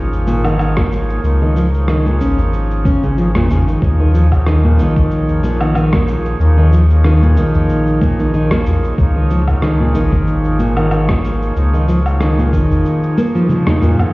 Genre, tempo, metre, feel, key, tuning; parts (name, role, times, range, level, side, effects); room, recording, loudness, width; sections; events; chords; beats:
organic downtempo; 93 BPM; 4/4; swing 55% on 16ths; A4 = 439 Hz
hand-pumped harmonium; accompaniment; 0.0-14.1 s; F3 to Db5; -22 LUFS; right 2 dB; sidechain pumping, tape echo
warm sub bass; bass; 0.0-12.9 s; Ab1 to Eb2; -14 LUFS; equal; sidechain pumping
dusty soul sampler-style drum kit; drums; 0.1-14.1 s; cabasa, rim click, toms, woodblock; -21 LUFS; equal
udu; percussion; 0.1-14.0 s; -19 LUFS; equal
nylon-string guitar; arpeggios; 0.3-14.0 s; Bb2 to Eb4; -17 LUFS; equal; tape echo
electronic kick drum; drums; 0.8-12.7 s; -16 LUFS; equal
light reverb; heard muffled through a wall, stone room reverb, EQ, nothing above 10.5 kHz; -11 LUFS; side -22 dB against mid
0.0-14.1 A section
drum fill 13.5-14.1
0.0 Db; 3.8 Eb5; 9.0 Db
0.59 | 1.24 1.89 2.53 3.17 | 3.82 4.46 5.11 5.76 | 6.40 7.05 7.69 8.34 | 8.98 9.63 10.27 10.92 | 11.56 12.21 12.85 13.50